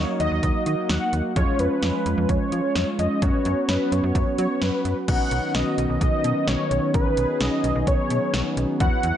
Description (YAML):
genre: synth-pop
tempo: 129 BPM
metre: 4/4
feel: straight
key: unclear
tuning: A4 = 440 Hz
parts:
  - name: wide unison lead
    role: melody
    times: 0.0-9.2 s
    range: B4 to F#5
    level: -26 LUFS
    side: equal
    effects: analog chorus, tape echo
  - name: analog synth brass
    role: accompaniment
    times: 0.0-9.2 s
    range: G#3 to F#4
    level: -28 LUFS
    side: right 1 dB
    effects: chorus
  - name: brassy analog pad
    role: sustained chords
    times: 0.0-9.2 s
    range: D#3 to G#4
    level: -28 LUFS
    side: equal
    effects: chorus
  - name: slap-like FM bass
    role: bass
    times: 0.0-9.1 s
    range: B1 to F#3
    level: -26 LUFS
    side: equal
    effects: none
  - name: punchy analog drum machine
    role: drums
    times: 0.2-9.1 s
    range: crash cymbal, hi-hat, kick drum, snare drum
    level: -26 LUFS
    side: equal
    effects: none
room: wet plate reverb, RT60 1.2 s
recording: dreamy mix soaked in reverb, nothing above 10.3 kHz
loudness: -20 LUFS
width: side -10 dB against mid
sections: 0.0-5.1 A section; 5.1-9.2 B section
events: none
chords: 0.0 D#m; 1.4 C#/E#; 3.2 F#sus4; 5.1 Badd9